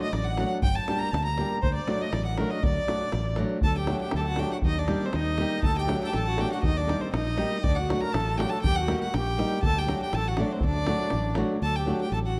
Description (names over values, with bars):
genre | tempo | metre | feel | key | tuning
balkan folk, Balkan wedding band | 120 BPM | 2/4 | straight | D phrygian dominant | A4 = 440 Hz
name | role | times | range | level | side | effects
clear violin | melody | 0.0-12.4 s | Bb4 to Bb5 | -34 LUFS | equal | none
accordion | second line | 0.0-12.4 s | C4 to Bb5 | -36 LUFS | equal | none
flamenco guitar | accompaniment | 0.0-12.1 s | F#3 to G4 | -33 LUFS | equal | none
davul | percussion | 0.0-11.5 s | none | -33 LUFS | equal | none
fingered electric bass | bass | 0.1-12.4 s | G1 to Eb2 | -32 LUFS | equal | none
room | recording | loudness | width
moderate concert hall reverb, RT60 1.7 s | dark, warm production | -27 LUFS | mono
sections
0.0-3.6 A section; 3.6-11.6 B section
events
none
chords
0.0 D; 0.6 Gm; 1.6 D; 4.6 Eb; 5.6 D; 6.6 Eb; 7.6 D; 8.6 Eb; 9.6 D